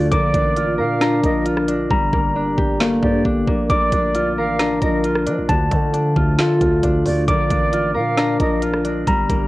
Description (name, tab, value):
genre	hip hop, trap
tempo	134 BPM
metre	4/4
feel	half-time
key	Bb major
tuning	A4 = 440 Hz
part	reedy silver concert flute	second line	0.0-8.6 s	D5 to F5	-25 LUFS	right 2 dB	cassette tape, analog delay
part	concert harp	accompaniment	0.0-9.5 s	D3 to Bb5	-21 LUFS	left 1 dB	low-pass filter, cassette tape
part	dark analog pad	sustained chords	0.0-9.5 s	Bb2 to G4	-30 LUFS	right 2 dB	none
part	mellow tine electric piano	arpeggios	0.0-9.5 s	Bb3 to D6	-21 LUFS	left 1 dB	medium stereo tremolo, low-pass filter, cassette tape, analog delay
part	growling 808-style bass	bass	0.0-9.5 s	G1 to F3	-25 LUFS	equal	none
part	trap drum kit	drums	0.1-9.4 s	hi-hat, kick drum, rim click, snare drum	-22 LUFS	equal	cassette tape
room	light reverb, digital ambience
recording	home recording on cassette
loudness	-16 LUFS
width	side -18 dB against mid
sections	0.0-9.5 A section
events	hi-hats muted 1.9-3.7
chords	0.1 Bb; 1.9 Gmadd9; 3.7 Bb; 5.5 Dm; 7.3 Bb